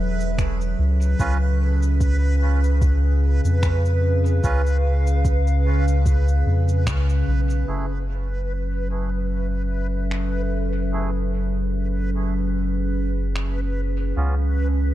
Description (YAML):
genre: ambient dub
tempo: 74 BPM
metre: 4/4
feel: swing 56% on 16ths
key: F# minor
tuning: A4 = 440 Hz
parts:
  - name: warbly tape-like pad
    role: sustained chords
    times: 0.0-14.9 s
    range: C#3 to E#5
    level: -27 LUFS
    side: equal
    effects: chorus, built-in reverb
  - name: soft dub sub bass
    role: bass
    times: 0.0-14.9 s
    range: E1 to E#2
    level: -20 LUFS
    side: equal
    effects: none
  - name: backwards swelling texture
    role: texture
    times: 0.0-14.9 s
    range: B4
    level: -34 LUFS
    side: right 1 dB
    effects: built-in reverb
  - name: electronic cabasa and finger snaps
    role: drums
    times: 0.2-13.5 s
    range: none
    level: -35 LUFS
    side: left 1 dB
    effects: dub echo
  - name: electronic kick drum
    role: drums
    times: 0.4-7.0 s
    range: none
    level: -23 LUFS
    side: equal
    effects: none
  - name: melodica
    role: stabs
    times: 1.2-14.3 s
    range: A3 to B4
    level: -34 LUFS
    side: right 4 dB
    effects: low-pass filter, dub echo
room: light reverb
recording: none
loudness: -19 LUFS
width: side -14 dB against mid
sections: 0.0-7.7 A section; 7.7-14.9 B section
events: band accent 6.9-7.3; filter sweep on ambient pad 7.7-14.9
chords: 0.0 F#m9; 1.2 C#7; 7.7 F#m9; 14.2 C#7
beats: 0.38 | 1.20 2.01 2.82 3.63 | 4.44 5.25 6.06 6.87 | 7.68 8.49 9.30 10.11 | 10.92 11.73 12.55 13.36 | 14.17